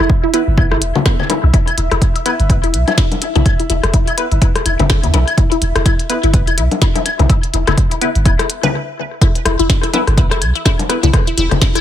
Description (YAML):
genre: minimal techno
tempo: 125 BPM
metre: 4/4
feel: swing 58% on 16ths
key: E minor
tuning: A4 = 441 Hz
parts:
  - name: resonant blip pluck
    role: riff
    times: 0.0-11.8 s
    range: B3 to B4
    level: -20 LUFS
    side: left 3 dB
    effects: phaser, sidechain pumping, tape echo
  - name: punchy sub bass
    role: bass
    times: 0.0-11.6 s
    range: E1 to E2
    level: -15 LUFS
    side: equal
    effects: sidechain pumping
  - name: warbly tape-like pad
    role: texture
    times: 0.0-8.7 s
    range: E5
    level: -28 LUFS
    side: equal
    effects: chorus, built-in reverb, sidechain pumping
  - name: electronic kick drum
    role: drums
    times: 0.1-11.7 s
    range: none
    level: -13 LUFS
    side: equal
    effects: none
  - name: wavetable chord stab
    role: stabs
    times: 0.3-11.0 s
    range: B3 to B4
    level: -23 LUFS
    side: equal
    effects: vintage 12-bit sampler grit, analog delay
  - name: minimal click drum kit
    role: drums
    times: 0.3-11.8 s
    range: hi-hat, snare drum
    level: -21 LUFS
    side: left 1 dB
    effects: analog delay
  - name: electronic claves, rim click, bongos and congas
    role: percussion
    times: 0.6-11.8 s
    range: none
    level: -20 LUFS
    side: left 4 dB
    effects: tape echo
room: little or no reverb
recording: echo-heavy mix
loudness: -12 LUFS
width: side -11 dB against mid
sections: 0.0-9.2 A section; 9.2-11.8 B section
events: filter sweep on synth arpeggio sound 0.0-9.2; stop 8.7-9.2; drop 9.2-11.8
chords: 0.0 E5